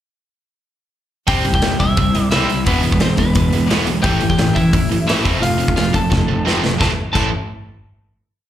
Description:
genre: punk rock.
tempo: 174 BPM.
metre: 4/4.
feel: straight.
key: A minor.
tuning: A4 = 440 Hz.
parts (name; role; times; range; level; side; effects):
lightly driven lead guitar; melody; 1.3-7.3 s; B3 to A5; -22 LUFS; left 2 dB; slapback echo.
crunchy overdriven guitar; riff; 1.3-7.3 s; E2 to C4; -21 LUFS; left 6 dB; slapback echo.
tight distorted guitar; riff; 1.3-7.3 s; A2 to E4; -20 LUFS; right 7 dB; distortion, slapback echo.
fuzz picked electric bass; bass; 1.3-7.3 s; E1 to C2; -22 LUFS; equal; overdrive.
big rock drum kit; drums; 1.3-7.2 s; crash cymbal, hi-hat, kick drum, snare drum; -19 LUFS; equal; none.
room: small room reverb.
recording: live gig heard through the venue's PA, club reverb.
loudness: -14 LUFS.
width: side -11 dB against mid.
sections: 1.3-6.8 verse; 6.8-8.2 final chord.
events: drum fill 6.1-6.8.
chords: 1.3 C; 2.7 E; 4.0 A5; 5.3 F; 6.8 Am.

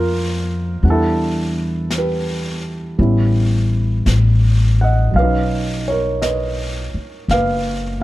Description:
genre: jazz ballad.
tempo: 56 BPM.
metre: 4/4.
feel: swing 68% on 8ths.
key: unclear.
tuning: A4 = 440 Hz.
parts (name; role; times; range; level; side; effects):
dark grand piano; accompaniment; 0.0-8.0 s; F#3 to Gb5; -20 LUFS; right 1 dB; none.
upright bass; bass; 0.0-8.0 s; F#1 to F2; -17 LUFS; left 1 dB; none.
jazz brush drum kit; drums; 0.8-8.0 s; brushed snare drum, hi-hat, snare drum; -30 LUFS; left 2 dB; none.
room: little or no reverb.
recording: dark, warm production.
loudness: -15 LUFS.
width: side -16 dB against mid.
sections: 0.0-8.0 A section.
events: none.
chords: 0.0 Ab69; 0.8 Em7; 3.0 A9; 5.1 Bmaj7.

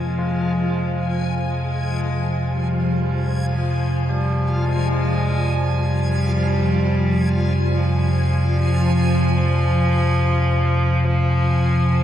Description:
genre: dark ambient drone.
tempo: free time.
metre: none.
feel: none.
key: F dorian.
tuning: A4 = 440 Hz.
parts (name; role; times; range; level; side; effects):
rich cello; melody; 0.0-12.0 s; F3 to Ab3; -26 LUFS; equal; diffuse ambient delay.
tubular bells; arpeggios; 0.0-10.4 s; D4 to F4; -33 LUFS; right 1 dB; diffuse ambient delay.
deep rumbling drone; drone; 0.0-12.0 s; F2 to C3; -19 LUFS; equal; built-in reverb.
backwards swelling texture; texture; 0.0-12.0 s; F3 to Ab5; -24 LUFS; left 1 dB; built-in reverb.
room: moderate huge ambient reverb, RT60 8.2 s.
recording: dark, warm production.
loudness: -17 LUFS.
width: side -11 dB against mid.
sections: 0.0-12.0 A section.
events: fade-in on tubular bells 0.0-12.0; fade-in on cello 0.0-12.0; filter sweep on synth drone 0.0-12.0.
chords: 0.0 Fm.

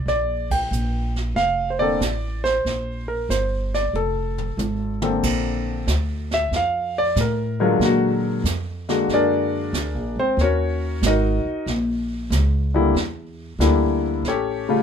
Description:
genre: jazz piano trio.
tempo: 93 BPM.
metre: 4/4.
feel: swing 67% on 8ths.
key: unclear.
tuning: A4 = 441 Hz.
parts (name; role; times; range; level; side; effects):
warm concert grand piano; melody; 0.0-14.8 s; C#3 to G5; -21 LUFS; left 2 dB; none.
upright bass; bass; 0.0-14.8 s; F1 to Bb2; -24 LUFS; equal; none.
jazz brush drum kit; drums; 0.1-14.8 s; brushed snare drum, crash cymbal, hi-hat, kick drum, ride cymbal, snare drum, toms; -29 LUFS; right 4 dB; none.
room: light reverb.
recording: minimal, uncompressed stereo recording.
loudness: -19 LUFS.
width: side -7 dB against mid.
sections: 0.0-5.2 A section; 5.2-14.8 B section.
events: band accent 0.4-0.7; drum fill 3.9-5.2; grand piano solo 5.2-14.8.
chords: 0.1 Bbmaj9; 3.9 F; 5.2 Bbmaj9; 7.8 Bb7b13; 10.4 Ebm7; 13.0 Em7b5; 14.2 A7b13.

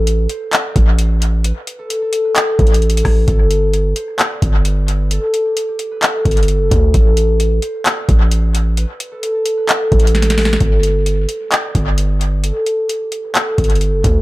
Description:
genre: hip hop, trap.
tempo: 131 BPM.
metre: 4/4.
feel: half-time.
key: G major.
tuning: A4 = 440 Hz.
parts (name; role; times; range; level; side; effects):
concert harp; melody; 0.0-14.2 s; G4 to D5; -19 LUFS; equal; low-pass filter, tape echo.
hard-hitting 808-style bass; bass; 0.0-14.2 s; F#1 to D2; -14 LUFS; equal; none.
booming analog drum machine; drums; 0.1-14.2 s; handclaps, hi-hat, kick drum, rim click, snare drum; -15 LUFS; equal; tape echo.
room: digital ambience.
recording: echo-heavy mix.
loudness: -13 LUFS.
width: side -18 dB against mid.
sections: 0.0-10.6 A section; 10.6-14.2 B section.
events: drum fill 10.1-10.6; filter sweep on harp 10.6-14.2.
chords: 0.0 Amadd9; 3.3 G5; 6.9 Amadd9; 10.6 G5.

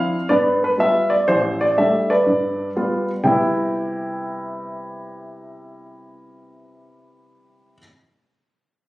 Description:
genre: solo jazz.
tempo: 122 BPM.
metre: 4/4.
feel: swing 66% on 8ths.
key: C major.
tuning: A4 = 442 Hz.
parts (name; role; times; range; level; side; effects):
warm baby grand piano; solo; 0.0-7.8 s; A1 to G5; -18 LUFS; equal; none.
room: light reverb.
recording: recorded on a phone in the room, studio reverb, compression.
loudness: -17 LUFS.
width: side -18 dB against mid.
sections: 0.0-3.2 A section; 3.2-7.2 B section.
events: none.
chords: 0.3 G7; 1.3 A7sus4; 2.3 G7; 3.2 Cmaj7.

